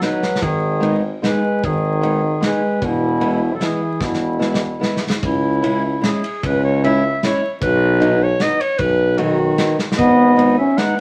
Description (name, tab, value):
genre	alpine folk, alpine dance band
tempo	151 BPM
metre	3/4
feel	rubato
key	unclear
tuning	A4 = 437 Hz
part	clear clarinet	melody	0.0-11.0 s	E4 to F#5	-24 LUFS	equal	none
part	warm euphonium	second line	0.0-4.8, 9.2-11.0 s	B2 to D#4	-20 LUFS	equal	none
part	fingerpicked old ladder-braced acoustic guitar	accompaniment	0.0-11.0 s	F#3 to E4	-24 LUFS	equal	none
part	natural country drum kit	drums	0.0-10.9 s	kick drum, ride cymbal, snare drum	-27 LUFS	equal	none
part	warm tuba	bass	0.4-10.8 s	E1 to C#2	-23 LUFS	equal	none
room	moderate studio reverb, RT60 0.8 s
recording	vinyl crackle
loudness	-17 LUFS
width	mono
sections	0.0-5.2 A section; 5.2-11.0 A section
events	drum fill 0.2, 4.0-5.2, 9.8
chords	0.4 G#m; 2.8 E; 5.2 C#m; 7.6 B; 10.0 G#m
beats	0.01 | 0.42 0.83 1.23 | 1.63 2.02 2.42 | 2.81 3.21 3.61 | 4.01 4.42 4.83 | 5.24 5.64 6.04 | 6.43 6.83 7.22 | 7.61 8.00 8.39 | 8.79 9.18 9.58 | 9.98 10.38 10.78